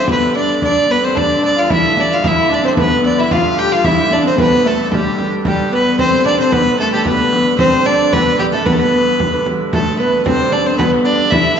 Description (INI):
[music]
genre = medieval dance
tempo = 112 BPM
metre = 2/4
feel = straight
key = G mixolydian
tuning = A4 = 438 Hz
[part]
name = clear fiddle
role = melody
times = 0.0-11.6 s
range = G4 to G5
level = -16 LUFS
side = right 1 dB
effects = none
[part]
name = warm viola da gamba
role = second line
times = 0.0-11.6 s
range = G3 to G4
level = -18 LUFS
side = left 4 dB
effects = none
[part]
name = warm hurdy-gurdy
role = drone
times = 0.0-11.6 s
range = G2 to D3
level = -23 LUFS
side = right 1 dB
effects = none
[part]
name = frame drum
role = percussion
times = 0.1-11.6 s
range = none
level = -20 LUFS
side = equal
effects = none
[part]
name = lute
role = second line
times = 1.1-11.6 s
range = G3 to G4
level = -20 LUFS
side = right 4 dB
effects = none
[sound]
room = wet scoring stage reverb, RT60 1.9 s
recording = recorded in a church or concert hall, nothing above 7.7 kHz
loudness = -12 LUFS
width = side -7 dB against mid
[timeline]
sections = 0.0-5.5 A section; 5.5-11.6 B section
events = none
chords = none